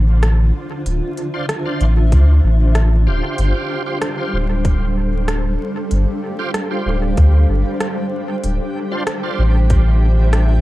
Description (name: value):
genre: ambient dub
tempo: 95 BPM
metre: 4/4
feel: straight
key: D minor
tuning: A4 = 440 Hz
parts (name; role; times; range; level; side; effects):
- granular cloud pad; sustained chords; 0.0-10.6 s; D3 to F5; -23 LUFS; equal; built-in reverb
- warm sub bass; bass; 0.0-10.6 s; D1 to D2; -13 LUFS; equal; tube saturation
- organic electronic drum kit; drums; 0.2-10.5 s; hi-hat, rim click; -28 LUFS; right 1 dB; dub echo
- bright tonewheel organ; stabs; 1.3-9.4 s; D4 to C5; -28 LUFS; right 2 dB; chorus vibrato, slow rotary speaker, dub echo
- electronic kick drum; drums; 2.1-9.8 s; none; -16 LUFS; equal; none
- backwards swelling texture; texture; 4.2-10.6 s; G3 to G4; -30 LUFS; right 2 dB; built-in reverb
room: little or no reverb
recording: dark, warm production, vinyl crackle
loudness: -14 LUFS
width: side -17 dB against mid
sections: 0.0-10.6 A section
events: none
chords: 0.0 Dm7; 3.4 G7sus4; 8.4 Dm7